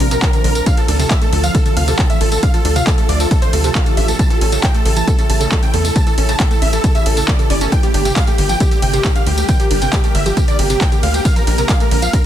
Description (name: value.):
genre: uplifting trance.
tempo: 136 BPM.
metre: 4/4.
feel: straight.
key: D minor.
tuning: A4 = 441 Hz.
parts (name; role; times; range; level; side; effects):
big supersaw lead; melody; 0.0-12.2 s; G4 to A5; -21 LUFS; right 1 dB; sidechain pumping, digital delay.
wide unison pluck; second line; 0.0-12.2 s; G4 to A5; -28 LUFS; right 1 dB; none.
shimmering ambient pad; sustained chords; 0.0-12.3 s; C3 to Bb4; -23 LUFS; equal; chorus, built-in reverb, sidechain pumping.
wide unison pluck; arpeggios; 0.0-12.2 s; C#2 to D4; -24 LUFS; right 3 dB; sidechain pumping, digital delay.
tight sequencer bass; bass; 0.0-12.1 s; G1 to E2; -17 LUFS; equal; sidechain pumping.
punchy analog drum machine; drums; 0.0-12.2 s; handclaps, hi-hat, ride cymbal, tambourine; -22 LUFS; equal; none.
electronic kick drum; drums; 0.2-12.2 s; none; -15 LUFS; equal; none.
room: little or no reverb.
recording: dense, heavily limited modern master.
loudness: -12 LUFS.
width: side -11 dB against mid.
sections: 0.0-12.3 A section.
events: none.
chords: 0.0 Bbadd9; 0.7 Dm; 4.2 A; 7.7 Gm; 11.3 Bbadd9.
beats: 0.22 | 0.66 1.10 1.55 1.99 | 2.43 2.87 3.31 3.75 | 4.19 4.63 5.08 5.52 | 5.96 6.40 6.84 7.28 | 7.72 8.16 8.61 9.05 | 9.49 9.93 10.37 10.81 | 11.25 11.69 12.13.